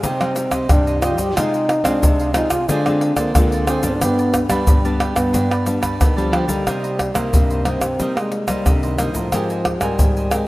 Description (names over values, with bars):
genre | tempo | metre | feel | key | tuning
samba and choro | 90 BPM | 4/4 | straight | C minor | A4 = 440 Hz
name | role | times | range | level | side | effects
breathy trombone | melody | 0.0-10.5 s | D3 to G4 | -22 LUFS | equal | none
cavaquinho | accompaniment | 0.0-10.5 s | D4 to Ab5 | -28 LUFS | right 3 dB | none
nylon-string guitar | accompaniment | 0.0-10.5 s | G2 to Bb4 | -24 LUFS | left 2 dB | none
nylon-string guitar | bass | 0.0-10.4 s | G2 to C4 | -25 LUFS | equal | none
egg shaker, surdo, pandeiro and tamborim | percussion | 0.0-10.5 s | none | -19 LUFS | equal | none
room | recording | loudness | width
moderate lush hall reverb, RT60 2.6 s | rough home demo mix | -16 LUFS | side -18 dB against mid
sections
0.0-6.7 A section; 6.7-10.5 B section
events
none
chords
0.0 Cm; 1.4 Fm/C; 2.7 Dm7b5; 4.0 G; 6.7 Cm7; 9.3 Abmaj9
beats
0.03 0.69 | 1.36 2.02 2.69 3.35 | 4.01 4.68 5.34 6.01 | 6.67 7.33 8.00 8.66 | 9.33 9.99